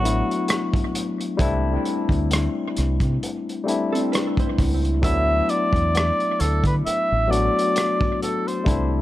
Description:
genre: R&B, neo-soul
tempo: 66 BPM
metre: 4/4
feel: swing 57% on 16ths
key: D mixolydian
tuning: A4 = 440 Hz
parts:
  - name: mellow cor anglais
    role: melody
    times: 0.0-8.9 s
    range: F#4 to E5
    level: -23 LUFS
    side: equal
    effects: analog delay
  - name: barky tine electric piano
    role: accompaniment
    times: 0.0-9.0 s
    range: F#3 to F#4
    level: -24 LUFS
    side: left 4 dB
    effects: overdrive, analog delay
  - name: deep dub fingered electric bass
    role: bass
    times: 0.0-9.0 s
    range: A1 to D3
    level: -22 LUFS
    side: equal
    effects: none
  - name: crunchy breakbeat drum kit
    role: drums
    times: 0.1-8.9 s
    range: hi-hat, kick drum, rim click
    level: -25 LUFS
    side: equal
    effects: none
  - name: hollow-body jazz guitar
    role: second line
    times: 3.9-5.0 s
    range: C4 to C5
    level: -28 LUFS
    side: right 4 dB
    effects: analog delay
room: small room ambience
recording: echo-heavy mix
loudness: -19 LUFS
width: side -15 dB against mid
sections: 0.0-9.0 A section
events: none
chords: 0.0 D6; 1.4 C69; 5.0 D6

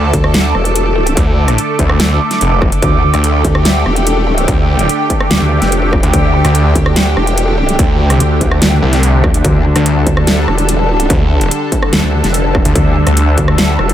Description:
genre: heavy wobble dubstep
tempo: 145 BPM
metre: 4/4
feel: half-time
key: unclear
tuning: A4 = 441 Hz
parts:
  - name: lush unison pad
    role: sustained chords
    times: 0.0-13.9 s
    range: D3 to A4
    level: -16 LUFS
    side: equal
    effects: chorus, phaser, sidechain pumping
  - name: snarling distorted saw bass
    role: bass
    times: 0.0-13.4 s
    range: F1 to D2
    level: -12 LUFS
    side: equal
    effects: distortion, overdrive
  - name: deep dark ambient pad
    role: texture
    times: 0.0-13.9 s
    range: D6 to E6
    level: -23 LUFS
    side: right 6 dB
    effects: chorus, built-in reverb, sidechain pumping
  - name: growl bass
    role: bass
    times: 0.1-13.9 s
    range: E1 to D2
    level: -13 LUFS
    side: equal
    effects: chorus, overdrive
  - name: dubstep drum kit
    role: drums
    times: 0.1-13.9 s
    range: hi-hat, rim click, snare drum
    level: -16 LUFS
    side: equal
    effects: small room ambience
  - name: electronic kick drum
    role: drums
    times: 0.1-13.5 s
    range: none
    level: -14 LUFS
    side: equal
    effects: distortion, small room ambience
room: little or no reverb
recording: none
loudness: -9 LUFS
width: side -11 dB against mid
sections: 0.0-13.9 A section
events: none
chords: 0.0 D5

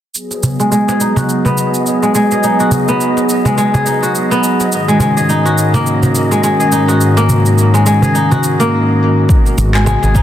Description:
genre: organic downtempo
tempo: 105 BPM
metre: 4/4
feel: swing 58% on 16ths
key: G# minor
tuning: A4 = 439 Hz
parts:
  - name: warm analog pad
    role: sustained chords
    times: 0.1-10.2 s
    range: G#2 to G#4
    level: -14 LUFS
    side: equal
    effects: chorus, sidechain pumping
  - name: electronic shaker and handclaps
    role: drums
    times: 0.1-10.2 s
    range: none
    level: -22 LUFS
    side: right 2 dB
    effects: none
  - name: wind-like tuned noise texture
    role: texture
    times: 0.8-8.7 s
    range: D#5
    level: -24 LUFS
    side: right 1 dB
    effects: built-in reverb
  - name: darbuka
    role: percussion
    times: 0.3-10.2 s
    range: none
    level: -18 LUFS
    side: equal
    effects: none
  - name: kora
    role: arpeggios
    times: 0.6-10.2 s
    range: G#3 to G#4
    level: -14 LUFS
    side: equal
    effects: low-pass filter, digital delay
  - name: electronic kick drum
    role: drums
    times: 9.3-10.2 s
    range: none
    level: -9 LUFS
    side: equal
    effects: overdrive
  - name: woody fretless electric bass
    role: bass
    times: 9.6-10.2 s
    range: G#1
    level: -12 LUFS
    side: equal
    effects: none
room: light reverb, digital ambience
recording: dense, heavily limited modern master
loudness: -10 LUFS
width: side -11 dB against mid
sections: 0.1-9.3 A section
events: filter sweep on kora 0.1-9.3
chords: 0.1 G#m7; 4.7 D#m7/G#; 9.3 G#m7

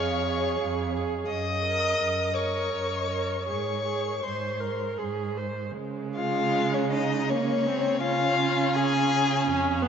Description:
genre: classical, slow romantic movement for string quartet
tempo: 80 BPM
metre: 3/4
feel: uneven beats, rubato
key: Db major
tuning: A4 = 440 Hz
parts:
  - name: dark violin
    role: melody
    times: 0.0-9.8 s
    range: Db5 to Eb6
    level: -30 LUFS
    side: left 6 dB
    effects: none
  - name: warm violin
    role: second line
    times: 0.0-9.8 s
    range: Db4 to Eb5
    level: -29 LUFS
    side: left 2 dB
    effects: none
  - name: warm viola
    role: accompaniment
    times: 0.0-9.9 s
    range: Ab3 to C5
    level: -30 LUFS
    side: right 3 dB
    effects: none
  - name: warm cello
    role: bass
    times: 0.0-9.9 s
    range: F2 to Db3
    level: -31 LUFS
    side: right 6 dB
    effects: none
room: wet cathedral reverb, RT60 5.9 s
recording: in a vast, echoing space, nothing above 7.7 kHz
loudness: -24 LUFS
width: side -7 dB against mid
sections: 0.0-5.8 A section; 5.8-9.9 B section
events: none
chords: 0.0 Db/F; 1.3 Ebm/Gb; 3.5 Ab; 5.8 Db5; 8.0 Db

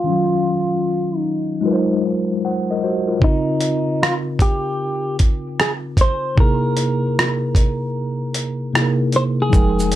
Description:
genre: lo-fi hip hop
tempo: 76 BPM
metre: 4/4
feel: swing 66% on 16ths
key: unclear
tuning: A4 = 443 Hz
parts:
  - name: clean electric guitar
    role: melody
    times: 0.0-10.0 s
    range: Eb4 to C5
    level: -22 LUFS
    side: equal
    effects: low-pass filter
  - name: mellow tine electric piano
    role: accompaniment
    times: 0.0-10.0 s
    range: C3 to G5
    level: -20 LUFS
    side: left 1 dB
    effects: medium stereo tremolo, cassette tape, low-pass filter
  - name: dusty soul sampler-style drum kit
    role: drums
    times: 3.2-10.0 s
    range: hi-hat, kick drum, rim click, shaker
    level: -16 LUFS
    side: equal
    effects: none
  - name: warm sub bass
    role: bass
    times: 9.5-10.0 s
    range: F1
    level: -23 LUFS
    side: equal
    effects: none
room: moderate small room reverb, RT60 0.5 s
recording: none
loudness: -16 LUFS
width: side -13 dB against mid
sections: 0.0-9.5 A section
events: filter sweep 0.0-9.5; kick muted 8.0-9.5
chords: 0.1 Ebm9; 1.6 Ab13; 3.2 Dbmaj9; 6.4 C7alt

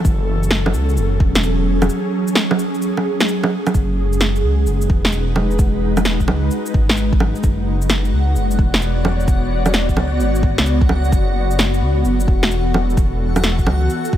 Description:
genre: future garage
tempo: 130 BPM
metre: 4/4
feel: swing 66% on 16ths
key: unclear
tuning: A4 = 441 Hz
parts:
  - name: ethereal airy pad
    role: sustained chords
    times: 0.0-14.2 s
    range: E3 to D5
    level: -21 LUFS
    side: equal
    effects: ensemble chorus, built-in reverb, sidechain pumping
  - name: dark detuned saw bass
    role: bass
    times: 0.0-14.2 s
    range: E1 to C#2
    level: -18 LUFS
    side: equal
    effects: sidechain pumping
  - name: electronic kick drum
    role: drums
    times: 0.0-14.2 s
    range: none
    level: -17 LUFS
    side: equal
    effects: studio reverb
  - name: electronic shaker, snare drum and bongos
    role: drums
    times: 0.0-14.1 s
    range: none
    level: -20 LUFS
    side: right 1 dB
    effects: studio reverb
  - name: backwards swelling texture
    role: texture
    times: 4.5-14.2 s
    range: F#4 to F#5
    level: -30 LUFS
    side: right 1 dB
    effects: built-in reverb
room: little or no reverb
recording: none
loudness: -15 LUFS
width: side -11 dB against mid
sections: 0.0-3.7 A section; 3.7-14.2 B section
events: none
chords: 0.1 F#m9; 3.7 G#m7; 7.4 Bmadd9; 11.1 E9sus4

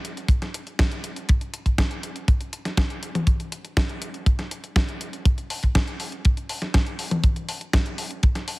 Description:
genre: italo disco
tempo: 121 BPM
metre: 4/4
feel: straight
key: none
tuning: none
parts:
  - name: clean 12-bit digital drum machine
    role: drums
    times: 0.0-8.6 s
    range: hi-hat, snare drum, toms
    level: -28 LUFS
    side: left 1 dB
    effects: overdrive
  - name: kick drum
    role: drums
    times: 0.3-8.3 s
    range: none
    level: -20 LUFS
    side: equal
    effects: none
room: light reverb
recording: heavily compressed radio sound, multiband compression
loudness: -22 LUFS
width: side -22 dB against mid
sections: 0.0-8.6 A section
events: none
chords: none

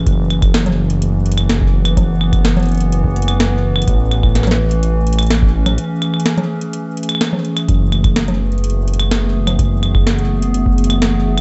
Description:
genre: IDM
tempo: 126 BPM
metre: 4/4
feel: straight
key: unclear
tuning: A4 = 441 Hz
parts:
  - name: warbly tape-like pad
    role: sustained chords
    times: 0.0-11.4 s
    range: E3 to G#4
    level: -22 LUFS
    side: equal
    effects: chorus, built-in reverb
  - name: dark detuned saw bass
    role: bass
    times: 0.0-11.4 s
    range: F#1 to A1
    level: -18 LUFS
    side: equal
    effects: none
  - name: booming analog drum machine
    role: drums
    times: 0.1-11.4 s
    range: claves, congas, hi-hat, snare drum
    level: -22 LUFS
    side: equal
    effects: overdrive, digital delay
  - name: electronic kick drum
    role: drums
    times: 0.1-10.8 s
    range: none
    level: -18 LUFS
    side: equal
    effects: overdrive
room: light reverb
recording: dark, warm production, nothing above 8.0 kHz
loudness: -15 LUFS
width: mono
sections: 0.0-11.4 A section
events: break 5.8-7.7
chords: 0.1 F#m11; 3.9 Amaj7; 7.7 F#m11

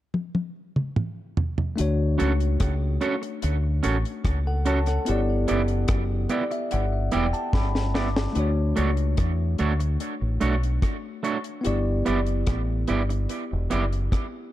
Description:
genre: lovers rock reggae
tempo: 73 BPM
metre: 4/4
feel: straight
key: D major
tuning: A4 = 443 Hz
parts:
  - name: deep reggae drum kit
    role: drums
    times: 0.1-14.3 s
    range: hi-hat, kick drum, rim click, snare drum, toms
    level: -26 LUFS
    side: equal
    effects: none
  - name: bell-like tine electric piano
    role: accompaniment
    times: 1.8-14.5 s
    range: A3 to D6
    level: -29 LUFS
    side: left 2 dB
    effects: tape echo
  - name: deep dub fingered electric bass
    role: bass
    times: 1.8-14.1 s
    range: E1 to E2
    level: -24 LUFS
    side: equal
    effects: none
  - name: electric guitar at the edge of break-up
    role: stabs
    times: 2.2-13.8 s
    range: A3 to D5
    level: -29 LUFS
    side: right 4 dB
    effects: tape echo
room: studio reverb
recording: dark, warm production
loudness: -22 LUFS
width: side -14 dB against mid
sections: 0.0-1.8 A section; 1.8-8.4 B section; 8.4-14.5 C section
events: drum fill 0.1-1.8, 7.5-8.4; tine electric piano fill 5.9-8.4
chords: 0.0 N.C.; 1.8 Dmaj7; 5.1 G6; 8.4 Dmaj7; 11.7 G6

